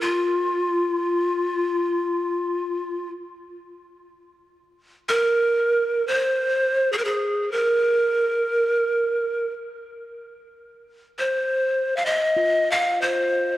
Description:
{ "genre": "world meditative, free-time meditation music", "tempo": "free time", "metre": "none", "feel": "none", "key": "F minor pentatonic", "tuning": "A4 = 440 Hz", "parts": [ { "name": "breathy bright large pan pipes", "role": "melody", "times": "0.0-13.6 s", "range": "F4 to F5", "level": "-20 LUFS", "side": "equal", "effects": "tape echo" }, { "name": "bronze singing bowl", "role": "texture", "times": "12.4-13.6 s", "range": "F4", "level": "-30 LUFS", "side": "left 1 dB", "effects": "none" } ], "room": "wet concert hall reverb, RT60 2.1 s", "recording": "worn, warbling old tape, cassette tape, warbly pitch drift", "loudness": "-20 LUFS", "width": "side -15 dB against mid", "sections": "0.0-13.6 A section", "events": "none", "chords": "none", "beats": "free time" }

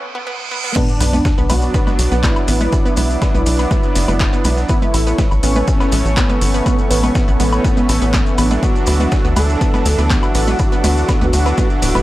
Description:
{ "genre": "melodic techno", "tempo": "122 BPM", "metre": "4/4", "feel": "straight", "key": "B minor", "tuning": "A4 = 440 Hz", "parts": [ { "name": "reverse cymbal and sub drop", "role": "sound effects", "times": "0.0-2.7 s", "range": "none", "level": "-25 LUFS", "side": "right 1 dB", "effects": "none" }, { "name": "wide unison pluck", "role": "arpeggios", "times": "0.1-12.0 s", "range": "B3 to B4", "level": "-23 LUFS", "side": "right 1 dB", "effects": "sidechain pumping, tape echo" }, { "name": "wide unison lead", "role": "melody", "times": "0.8-12.0 s", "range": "B3 to A4", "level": "-22 LUFS", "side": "equal", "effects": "sidechain pumping, analog delay" }, { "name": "warm analog pad", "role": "sustained chords", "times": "0.8-12.0 s", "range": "A4 to D6", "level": "-27 LUFS", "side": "equal", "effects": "chorus, sidechain pumping" }, { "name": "dusty soul sampler-style drum kit", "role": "drums", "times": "0.8-11.9 s", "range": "ride cymbal, snare drum", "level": "-34 LUFS", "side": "right 1 dB", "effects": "none" }, { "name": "electronic kick drum", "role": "drums", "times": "0.8-11.7 s", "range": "none", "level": "-17 LUFS", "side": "equal", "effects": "high-pass filter on kick" }, { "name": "punchy analog drum machine", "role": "drums", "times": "0.8-12.0 s", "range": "congas, crash cymbal, handclaps, hi-hat, ride cymbal, woodblock", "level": "-23 LUFS", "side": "equal", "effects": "none" }, { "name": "maracas", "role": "percussion", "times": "0.8-12.0 s", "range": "none", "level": "-31 LUFS", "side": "left 2 dB", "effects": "none" }, { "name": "tight sequencer bass", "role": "bass", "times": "1.0-12.0 s", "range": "D1 to D2", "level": "-16 LUFS", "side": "equal", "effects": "sidechain pumping, high-pass filter" }, { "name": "brassy analog pad", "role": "stabs", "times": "1.5-12.0 s", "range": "E3 to D4", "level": "-24 LUFS", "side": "right 2 dB", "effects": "chorus, sidechain pumping, tape echo" } ], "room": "little or no reverb", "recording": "dry, gritty hardware recording, high-pass filter", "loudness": "-13 LUFS", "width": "side -16 dB against mid", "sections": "0.8-12.0 A section", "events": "break 0.0-0.8; reverse cymbal 0.0-0.8; drop 0.8-12.0; impact 0.8-2.7", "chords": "0.0 N.C.; 0.8 Bm; 4.7 A; 8.6 Dadd9", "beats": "0.27 | 0.76 1.25 1.74 2.23 | 2.73 3.22 3.71 4.20 | 4.69 5.18 5.68 6.17 | 6.66 7.15 7.64 8.14 | 8.63 9.12 9.61 10.10 | 10.60 11.09 11.58" }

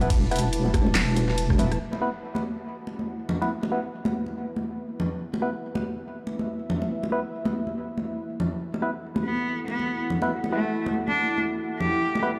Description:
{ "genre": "deep dubstep", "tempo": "141 BPM", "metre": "4/4", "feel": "swing 58% on 16ths, half-time", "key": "unclear", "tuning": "A4 = 439 Hz", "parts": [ { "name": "dark analog pad", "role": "sustained chords", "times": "0.0-12.4 s", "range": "E4 to A5", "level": "-36 LUFS", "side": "equal", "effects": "chorus" }, { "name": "percussive organ stab", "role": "stabs", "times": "0.0-12.3 s", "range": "B3 to B4", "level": "-34 LUFS", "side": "equal", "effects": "chorus, dub echo" }, { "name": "deep soft wobble bass", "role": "bass", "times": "0.0-1.8 s", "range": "E1", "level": "-27 LUFS", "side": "equal", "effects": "chorus" }, { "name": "dubstep drum kit", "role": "drums", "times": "0.0-1.8 s", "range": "handclaps, hi-hat, ride cymbal, rim click, snare drum", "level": "-31 LUFS", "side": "equal", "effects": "low-pass filter on hats, small room ambience, low-pass filter on cymbals, low-pass filter on snare" }, { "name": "electronic kick drum", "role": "drums", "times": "0.1-1.6 s", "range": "none", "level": "-26 LUFS", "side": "equal", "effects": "small room ambience" }, { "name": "congas", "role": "percussion", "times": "0.7-12.2 s", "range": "none", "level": "-32 LUFS", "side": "equal", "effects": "dub echo" }, { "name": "clear cello", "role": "melody", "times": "9.2-12.2 s", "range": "A3 to G4", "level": "-30 LUFS", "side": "equal", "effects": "vintage 12-bit sampler grit, dub echo" } ], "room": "light reverb", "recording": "played on a big sound system in a bare room, stone room reverb", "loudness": "-27 LUFS", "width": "mono", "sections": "0.0-1.8 A section; 1.8-12.4 B section", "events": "drop 0.0-1.8; filter sweep on analog synth pad 1.8-12.4", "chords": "0.0 E5", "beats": "| 0.10 0.53 0.95 1.38 | 1.80 2.23 2.65 3.08 | 3.50 3.93 4.36 4.78 | 5.21 5.63 6.06 6.48 | 6.91 7.33 7.76 8.19 | 8.61 9.04 9.46 9.89 | 10.31 10.74 11.16 11.59 | 12.02" }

